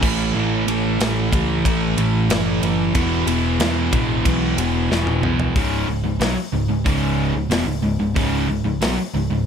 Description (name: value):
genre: hard rock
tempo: 92 BPM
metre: 4/4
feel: straight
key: C# minor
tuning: A4 = 442 Hz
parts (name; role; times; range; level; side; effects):
- crunchy overdriven guitar; riff; 0.0-9.5 s; C#2 to A3; -25 LUFS; left 11 dB; none
- crunchy overdriven guitar; riff; 0.0-9.5 s; C#2 to A3; -23 LUFS; right 9 dB; none
- distorted electric guitar; riff; 0.0-9.5 s; C#2 to A4; -26 LUFS; equal; distortion
- picked electric bass; bass; 0.0-9.5 s; C#1 to E2; -24 LUFS; equal; none
- tight metal drum kit; drums; 0.0-9.0 s; crash cymbal, hi-hat, kick drum, ride cymbal, snare drum, toms; -24 LUFS; equal; none
room: moderate studio reverb, RT60 0.6 s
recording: none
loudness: -17 LUFS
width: side -7 dB against mid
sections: 0.0-5.6 A section; 5.6-9.5 B section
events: drum fill 4.9-5.6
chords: 0.0 A; 2.9 E; 5.6 C#m